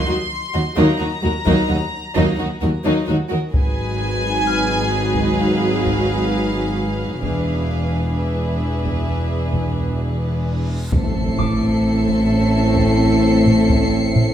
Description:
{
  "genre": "cinematic, suspense film score",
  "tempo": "65 BPM",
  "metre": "4/4",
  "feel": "straight",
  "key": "unclear",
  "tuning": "A4 = 440 Hz",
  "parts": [
    { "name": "warm studio violin section", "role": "melody", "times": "0.0-14.3 s", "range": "E5 to C6", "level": "-28 LUFS", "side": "equal", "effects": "none" },
    { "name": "warm chamber violin section", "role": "second line", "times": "0.0-14.3 s", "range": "A#3 to B4", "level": "-26 LUFS", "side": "equal", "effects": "none" },
    { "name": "warm chamber viola section", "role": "accompaniment", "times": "0.0-14.3 s", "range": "E3 to D#4", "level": "-23 LUFS", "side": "left 1 dB", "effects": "none" },
    { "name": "dark chamber cello section", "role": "bass", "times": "0.1-14.3 s", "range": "D#2 to A2", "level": "-24 LUFS", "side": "equal", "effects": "none" },
    { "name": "clear chamber double bass section", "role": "bass", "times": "0.8-14.3 s", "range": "E1 to D#2", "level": "-22 LUFS", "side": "right 1 dB", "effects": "none" },
    { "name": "taiko ensemble", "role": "drums", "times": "1.5-14.3 s", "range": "none", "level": "-23 LUFS", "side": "equal", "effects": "none" },
    { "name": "concert harp", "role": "texture", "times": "2.1-14.3 s", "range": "D6 to A#6", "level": "-30 LUFS", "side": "left 2 dB", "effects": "none" },
    { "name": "reverse cymbal and impact", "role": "sound effects", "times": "10.9-14.3 s", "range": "none", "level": "-26 LUFS", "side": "equal", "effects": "none" },
    { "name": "clear trombone section", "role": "sustained chords", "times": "10.9-14.3 s", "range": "A2 to A3", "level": "-22 LUFS", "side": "equal", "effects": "none" },
    { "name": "dark French horn section", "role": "sustained chords", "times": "10.9-14.3 s", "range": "C4 to E4", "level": "-24 LUFS", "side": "right 2 dB", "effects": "none" },
    { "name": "dark chamber violin section", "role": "texture", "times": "10.9-14.3 s", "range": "C7 to C#7", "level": "-28 LUFS", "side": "left 1 dB", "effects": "none" }
  ],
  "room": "wet stone room reverb, RT60 1.1 s",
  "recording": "none",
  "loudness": "-16 LUFS",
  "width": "side -10 dB against mid",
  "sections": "0.0-10.9 A section; 10.9-14.3 B section",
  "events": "impact 10.9-14.3; reverse cymbal 10.9",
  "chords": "0.0 D#m; 3.5 G#m7; 7.2 E7; 10.9 Am",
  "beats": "0.77 1.70 2.62 | 3.54 4.46 5.39 6.31 | 7.23 8.16 9.08 10.00 | 10.93 11.85 12.77 13.70"
}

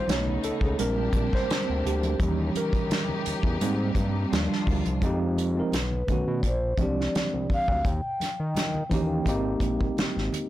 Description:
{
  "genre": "R&B, neo-soul",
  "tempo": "85 BPM",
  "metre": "4/4",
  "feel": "swing 53% on 16ths",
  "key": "unclear",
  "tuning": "A4 = 440 Hz",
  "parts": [
    { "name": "mellow tine electric piano", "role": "accompaniment", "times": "0.0-10.5 s", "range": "D#3 to C#5", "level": "-28 LUFS", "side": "right 2 dB", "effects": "medium stereo tremolo" },
    { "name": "rich studio string section", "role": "sustained chords", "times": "0.0-5.0 s", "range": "C3 to G4", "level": "-34 LUFS", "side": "left 2 dB", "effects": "none" },
    { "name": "fat analog bass", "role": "bass", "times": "0.1-10.3 s", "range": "Ab1 to Eb3", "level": "-29 LUFS", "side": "equal", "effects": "transformer saturation" },
    { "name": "unplugged drum kit", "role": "drums", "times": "0.1-10.5 s", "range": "hi-hat, kick drum, snare drum", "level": "-28 LUFS", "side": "equal", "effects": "none" },
    { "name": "congas", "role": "percussion", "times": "0.1-10.5 s", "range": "none", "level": "-38 LUFS", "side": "left 2 dB", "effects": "none" },
    { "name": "vibraphone with soft mallets", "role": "melody", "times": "5.8-9.2 s", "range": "B4 to G5", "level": "-31 LUFS", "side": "equal", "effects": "tape echo" }
  ],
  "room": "light reverb",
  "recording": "blown-out, overdriven recording, overdrive",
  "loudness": "-24 LUFS",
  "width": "side -14 dB against mid",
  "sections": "0.0-5.0 A section; 5.0-10.5 B section",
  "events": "tine electric piano solo 0.0-5.0",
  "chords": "0.1 B9; 0.8 Bb13; 2.2 Eb7b9; 3.6 Abmaj7; 4.3 Ebmaj9; 5.0 Fm9; 5.7 B9; 6.4 Bb13; 7.8 Eb7b9; 9.3 Abmaj7",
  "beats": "0.08 0.79 1.49 | 2.20 2.91 3.61 4.32 | 5.02 5.73 6.43 7.14 | 7.85 8.55 9.26 9.96"
}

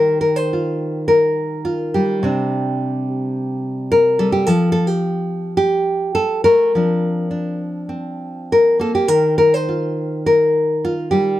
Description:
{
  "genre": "folk, solo fingerstyle acoustic guitar",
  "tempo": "105 BPM",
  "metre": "4/4",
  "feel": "rubato",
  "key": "unclear",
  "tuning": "A4 = 439 Hz",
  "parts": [
    { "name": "nylon-string guitar", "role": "solo", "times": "0.0-11.4 s", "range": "C3 to C5", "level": "-15 LUFS", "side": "left 1 dB", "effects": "none" }
  ],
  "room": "light reverb",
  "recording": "close, detailed microphones",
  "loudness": "-15 LUFS",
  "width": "side -14 dB against mid",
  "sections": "0.0-11.4 A section",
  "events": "none",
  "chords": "0.0 Ebadd9; 2.2 Csus2; 4.5 F; 6.8 Bbadd9/F; 9.1 Ebadd9",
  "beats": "0.52 1.10 1.66 | 2.22 2.79 3.35 3.92 | 4.48 5.04 5.61 6.17 | 6.75 7.32 7.90 8.49 | 9.09 9.68 10.26 10.84"
}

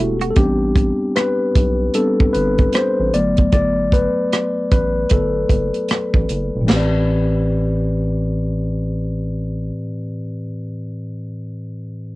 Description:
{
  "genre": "R&B, neo-soul",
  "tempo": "76 BPM",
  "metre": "4/4",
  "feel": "swing 62% on 16ths",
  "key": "A dorian",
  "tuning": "A4 = 440 Hz",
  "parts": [
    { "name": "mellow tine electric piano", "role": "accompaniment", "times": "0.0-12.2 s", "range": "A2 to D5", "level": "-18 LUFS", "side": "left 1 dB", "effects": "cassette tape" },
    { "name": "round analog bass", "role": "bass", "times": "0.0-9.7 s", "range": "E1 to B1", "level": "-23 LUFS", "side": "right 1 dB", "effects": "none" },
    { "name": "tight funk drum kit", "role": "drums", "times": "0.2-6.9 s", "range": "china cymbal, hi-hat, kick drum, rim click, snare drum", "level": "-17 LUFS", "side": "right 1 dB", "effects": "cassette tape" }
  ],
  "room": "light reverb",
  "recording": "home recording on cassette",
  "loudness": "-16 LUFS",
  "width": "side -19 dB against mid",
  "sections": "0.0-6.7 A section; 6.7-9.8 B section",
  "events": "tine electric piano solo 0.0-6.7",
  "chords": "0.4 Am11; 3.1 Gmaj9; 6.7 Am11",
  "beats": "| 0.36 1.15 1.94 2.73 | 3.52 4.31 5.10 5.89 | 6.68 7.47 8.26 9.04"
}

